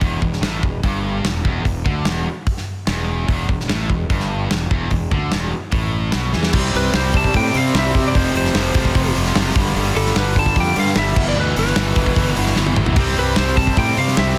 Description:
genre	hard rock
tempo	149 BPM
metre	4/4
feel	straight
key	E phrygian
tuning	A4 = 440 Hz
part	cranked stack guitar	riff	0.0-14.4 s	E2 to C4	-27 LUFS	equal	overdrive
part	scooped high-gain guitar	riff	0.0-14.4 s	E2 to C4	-29 LUFS	equal	distortion
part	fuzz fingered electric bass	bass	0.0-14.3 s	E1 to C3	-24 LUFS	equal	overdrive
part	big rock drum kit	drums	0.0-14.3 s	crash cymbal, hi-hat, kick drum, snare drum, toms	-22 LUFS	equal	soft clipping on kick
part	mellow tonewheel organ	sustained chords	6.5-14.4 s	E3 to D5	-32 LUFS	equal	none
part	high-gain distorted guitar	riff	6.5-14.4 s	E2 to C4	-30 LUFS	equal	none
part	lightly driven lead guitar	melody	6.8-14.4 s	A4 to A5	-25 LUFS	equal	none
room	small room ambience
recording	dense, heavily limited modern master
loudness	-18 LUFS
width	mono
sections	0.0-6.5 A section; 6.5-14.4 B section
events	drum fill 6.3, 12.6-13.0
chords	0.0 Em; 6.5 C5; 8.1 F5; 9.6 G5; 11.2 Em/G; 13.0 C5

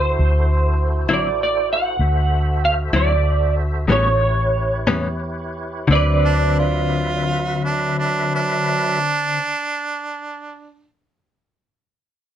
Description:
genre	slow blues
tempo	57-67 BPM (dotted quarters)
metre	12/8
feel	straight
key	D mixolydian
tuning	A4 = 439 Hz
part	electric guitar through a small old amp	melody	0.0-9.0 s	C5 to F#5	-21 LUFS	right 2 dB	ensemble chorus
part	tonewheel organ	sustained chords	0.0-9.0 s	F#3 to E5	-28 LUFS	equal	slow rotary speaker, overdrive, chorus vibrato
part	vintage muted fingered electric bass	bass	0.0-9.0 s	A1 to E2	-19 LUFS	equal	none
part	direct-recorded clean electric guitar	accompaniment	1.1-9.5 s	A2 to B4	-21 LUFS	left 4 dB	tremolo
part	warm harmonica	second line	6.3-10.9 s	D4 to F4	-21 LUFS	right 3 dB	none
room	moderate club ambience, RT60 0.5 s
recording	none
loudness	-17 LUFS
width	side -10 dB against mid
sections	0.0-5.9 A section; 5.9-10.1 B section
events	slowing down 0.8-5.9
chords	0.0 D9; 3.9 A9; 5.9 D13

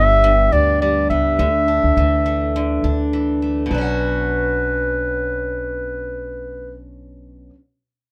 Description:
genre	acoustic pop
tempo	103 BPM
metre	4/4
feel	swing 55% on 16ths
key	B minor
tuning	A4 = 439 Hz
part	mellow clarinet	melody	0.0-6.8 s	B4 to E5	-21 LUFS	equal	none
part	picked steel-string acoustic guitar	accompaniment	0.0-7.6 s	G2 to F#4	-26 LUFS	equal	none
part	upright bass	bass	0.0-7.5 s	G1 to D2	-24 LUFS	equal	none
room	light reverb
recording	rough home demo mix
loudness	-19 LUFS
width	mono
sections	0.0-3.7 A section; 3.7-6.0 B section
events	none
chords	0.0 G; 1.4 Dsus2; 3.7 Bmadd9

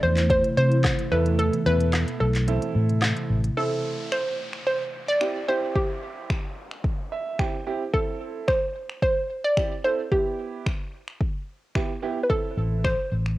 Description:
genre	dance-pop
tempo	110 BPM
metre	4/4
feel	straight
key	A minor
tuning	A4 = 440 Hz
part	hollow square pluck	melody	0.0-13.4 s	G4 to D5	-25 LUFS	equal	chorus, tape echo
part	clear concert grand piano	accompaniment	0.0-12.9 s	B3 to G5	-31 LUFS	right 6 dB	sidechain pumping
part	glassy FM pad	sustained chords	0.0-3.6 s	C3 to E4	-30 LUFS	right 1 dB	ensemble chorus, built-in reverb, phaser, sidechain pumping
part	vintage muted fingered electric bass	bass	0.0-3.5, 12.6-13.4 s	A1 to C3	-22 LUFS	equal	sidechain pumping
part	organic electronic drum kit	drums	0.2-13.4 s	finger snaps, handclaps, hi-hat, kick drum, snare drum	-27 LUFS	equal	cassette tape
part	downlifter	sound effects	3.6-7.9 s	none	-40 LUFS	equal	none
room	light reverb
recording	home recording on cassette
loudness	-22 LUFS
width	side -16 dB against mid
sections	0.0-3.6 A section; 3.6-13.4 B section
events	break 1.4-3.6; grand piano fill 6.8-7.9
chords	0.0 Am; 1.1 Esus4; 2.5 Am; 5.5 C; 7.9 Am/C; 10.1 Em; 12.3 Am

